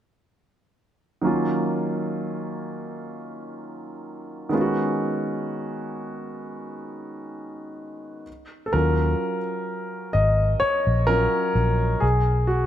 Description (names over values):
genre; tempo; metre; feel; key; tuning
contemporary R&B; 64 BPM; 4/4; swing 54% on 16ths; Eb minor; A4 = 440 Hz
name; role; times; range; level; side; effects
warm concert grand piano; accompaniment; 1.2-12.7 s; Eb3 to Eb5; -24 LUFS; equal; none
vintage muted fingered electric bass; bass; 8.7-12.7 s; Ab1 to Eb2; -21 LUFS; equal; none
room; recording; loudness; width
light reverb; none; -21 LUFS; side -11 dB against mid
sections
1.2-8.7 A section; 8.7-12.7 B section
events
grand piano solo 8.7-12.7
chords
1.2 Ebm7; 4.5 B69; 8.3 N.C.; 8.7 Ebm7; 12.0 B5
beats
| 1.24 2.18 3.12 4.05 | 4.99 5.93 6.87 7.80 | 8.74 9.68 10.62 11.55 | 12.49